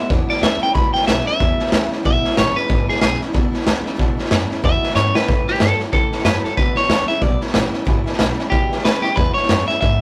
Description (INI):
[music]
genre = rockabilly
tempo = 185 BPM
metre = 4/4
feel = swing 59% on 8ths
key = E mixolydian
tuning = A4 = 440 Hz
[part]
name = electric guitar at the edge of break-up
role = melody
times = 0.0-10.0 s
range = G4 to B5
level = -22 LUFS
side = equal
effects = none
[part]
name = picked steel-string acoustic guitar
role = accompaniment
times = 0.0-10.0 s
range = E2 to F#4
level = -32 LUFS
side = equal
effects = none
[part]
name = warm upright piano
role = accompaniment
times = 0.0, 7.9-9.9 s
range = E5 to C#6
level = -35 LUFS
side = equal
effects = none
[part]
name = electric guitar through a small old amp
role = riff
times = 0.0-10.0 s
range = E2 to F#3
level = -31 LUFS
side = equal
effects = none
[part]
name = upright bass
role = bass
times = 0.1-10.0 s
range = G#1 to A2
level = -26 LUFS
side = equal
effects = none
[part]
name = raw garage drum kit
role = drums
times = 0.1-9.9 s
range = hi-hat, kick drum, snare drum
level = -20 LUFS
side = equal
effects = none
[sound]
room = light reverb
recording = rough rehearsal-room recording, tube saturation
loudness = -18 LUFS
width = mono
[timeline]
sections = 0.1-10.0 A section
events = clean electric guitar solo 0.1-10.0; drum fill 5.0-5.3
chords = 0.1 E7; 5.3 A7; 6.6 E7